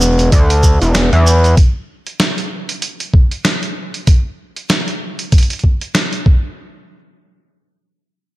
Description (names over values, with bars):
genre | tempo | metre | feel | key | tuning
glitch hop | 96 BPM | 4/4 | swing 58% on 16ths | unclear | A4 = 440 Hz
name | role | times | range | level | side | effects
gritty driven synth bass | bass | 0.0-1.6 s | E1 to E2 | -10 LUFS | equal | distortion, tube saturation
shekere | percussion | 0.0-1.5 s | none | -23 LUFS | right 2 dB | none
boom bap sampler-style drum kit | drums | 0.2-6.2 s | hi-hat, snare drum | -18 LUFS | right 1 dB | small room ambience
electronic kick drum | drums | 0.3-6.4 s | none | -10 LUFS | equal | small room ambience
room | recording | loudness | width
light reverb | none | -12 LUFS | side -18 dB against mid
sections
0.0-6.6 A section; 6.6-8.4 B section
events
none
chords
none